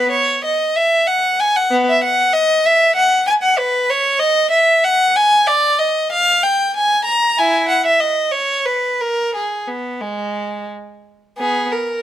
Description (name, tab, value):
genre	classical, baroque-style suite movement for unaccompanied violin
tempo	88-96 BPM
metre	3/4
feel	rubato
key	B major, G# minor from 3.6 s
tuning	A4 = 440 Hz
part	rich violin	solo	0.0-12.0 s	G#3 to A#5	-14 LUFS	equal	none
room	moderate stone room reverb, RT60 1.1 s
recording	none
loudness	-13 LUFS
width	side -12 dB against mid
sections	0.0-11.4 A section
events	none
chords	none